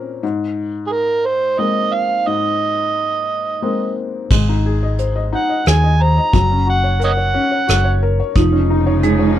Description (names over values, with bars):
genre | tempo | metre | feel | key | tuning
acoustic folk-pop ballad | 89 BPM | 3/4 | straight | unclear | A4 = 440 Hz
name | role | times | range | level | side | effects
felt-muted upright piano | accompaniment | 0.0-9.4 s | Ab2 to Eb5 | -21 LUFS | left 5 dB | none
overdriven harmonica | melody | 0.9-8.0 s | Ab4 to Bb5 | -17 LUFS | right 3 dB | none
hollow-body short-scale fingered electric bass | bass | 4.3-9.4 s | F1 to Eb2 | -16 LUFS | equal | none
soft brush drum kit | drums | 4.3-9.2 s | crash cymbal, hi-hat, kick drum, rim click | -18 LUFS | equal | none
muted studio string section | sustained chords | 8.3-9.4 s | Db3 to Eb4 | -22 LUFS | left 3 dB | none
vibraphone with medium hard mallets | arpeggios | 8.4-9.4 s | Ab3 to Eb4 | -16 LUFS | right 8 dB | none
room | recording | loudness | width
light reverb | none | -14 LUFS | side -11 dB against mid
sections
0.0-4.3 A section; 4.3-9.4 B section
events
none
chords
0.2 Abadd9; 4.3 Ab; 6.3 Gb; 8.4 Dbadd9/F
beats
| 0.23 0.91 1.58 | 2.26 2.94 3.62 | 4.30 4.98 5.66 | 6.33 7.01 7.69 | 8.36 9.04